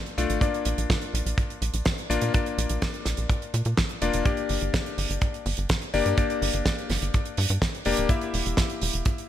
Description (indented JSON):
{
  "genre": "italo disco",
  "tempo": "125 BPM",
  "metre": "4/4",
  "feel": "straight",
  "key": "unclear",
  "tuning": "A4 = 443 Hz",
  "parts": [
    { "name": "bright electric grand piano", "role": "stabs", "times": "0.0-9.3 s", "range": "A3 to E5", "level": "-29 LUFS", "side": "left 5 dB", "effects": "ping-pong delay" },
    { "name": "damped 70s drum kit", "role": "drums", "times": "0.1-9.3 s", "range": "hi-hat, snare drum", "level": "-30 LUFS", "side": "right 3 dB", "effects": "studio reverb" },
    { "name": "tight sequencer bass", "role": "bass", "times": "0.2-9.0 s", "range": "D1 to Bb2", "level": "-27 LUFS", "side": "right 1 dB", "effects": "tube saturation" },
    { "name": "kick drum", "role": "drums", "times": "0.4-9.2 s", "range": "none", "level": "-25 LUFS", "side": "right 1 dB", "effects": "studio reverb" }
  ],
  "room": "studio ambience",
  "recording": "none",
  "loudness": "-23 LUFS",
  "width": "side -11 dB against mid",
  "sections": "0.0-9.3 A section",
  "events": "none",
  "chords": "0.4 Bb; 4.3 Gm; 8.1 Edim"
}